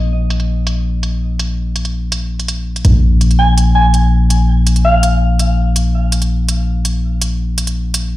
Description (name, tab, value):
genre	half-time drum and bass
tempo	165 BPM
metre	4/4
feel	half-time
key	unclear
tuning	A4 = 441 Hz
part	long sustained 808-style bass	bass	0.0-8.2 s	Bb1	-13 LUFS	equal	tube saturation
part	electronic hi-hat	drums	0.3-8.0 s	none	-21 LUFS	right 2 dB	low-pass filter on hats, low-pass filter on snare
part	soft synth bell	melody	3.4-5.1 s	F5 to Ab5	-18 LUFS	right 1 dB	chorus, phaser, ping-pong delay
room	little or no reverb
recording	played on a big sound system in a bare room, large studio reverb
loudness	-12 LUFS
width	side -16 dB against mid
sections	0.0-8.2 A section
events	none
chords	none